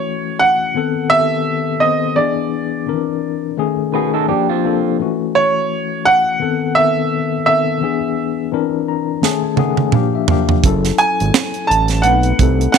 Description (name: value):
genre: R&B, neo-soul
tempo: 85 BPM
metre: 4/4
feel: swing 58% on 16ths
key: unclear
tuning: A4 = 440 Hz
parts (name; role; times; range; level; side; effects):
- clear baby grand piano; melody; 0.0-12.8 s; C#5 to A5; -16 LUFS; right 3 dB; none
- tine electric piano; accompaniment; 0.0-12.8 s; D#3 to Bb5; -18 LUFS; left 11 dB; overdrive, fast tremolo
- electric guitar through a small old amp; second line; 3.9-5.0 s; B#3 to B4; -19 LUFS; right 16 dB; none
- tight funk drum kit; drums; 9.2-12.8 s; finger snaps, hi-hat, kick drum, snare drum, toms; -16 LUFS; right 6 dB; none
- fat analog bass; bass; 10.6-12.7 s; F#1 to C2; -16 LUFS; right 2 dB; transformer saturation
room: light reverb, small room reverb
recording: 1960s-style stereo with parts hard left and right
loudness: -14 LUFS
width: side -6 dB against mid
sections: 0.0-12.8 A section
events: tine electric piano fill 8.5-10.6; drum fill 9.2-10.6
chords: 0.0 F#m7; 0.7 B7b9; 2.2 E7; 2.9 C9; 3.6 B13/D#; 4.3 Gm7; 5.0 F#m7; 6.4 B7b9; 7.8 E7; 8.5 C9; 9.2 F#m69/D#; 9.9 Gm7; 10.6 F#m7; 12.0 B7b9